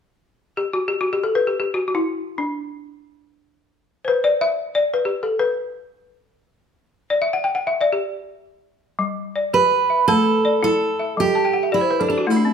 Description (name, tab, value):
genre	west african traditional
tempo	free time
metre	none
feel	none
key	G major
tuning	A4 = 441 Hz
part	balafon	arpeggios	0.6-12.5 s	G3 to A5	-20 LUFS	left 3 dB	none
part	picked steel-string acoustic guitar	melody	9.5-12.5 s	D4 to B4	-17 LUFS	right 4 dB	none
room	moderate large studio reverb, RT60 1.2 s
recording	band playing live in one room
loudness	-18 LUFS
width	side -7 dB against mid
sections	0.2-9.0 A section; 9.0-12.5 B section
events	balafon solo 0.2-9.0; balafon fill 11.3-12.5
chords	0.2 N.C.; 9.0 G; 10.1 A5; 11.2 Gmaj13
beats	free time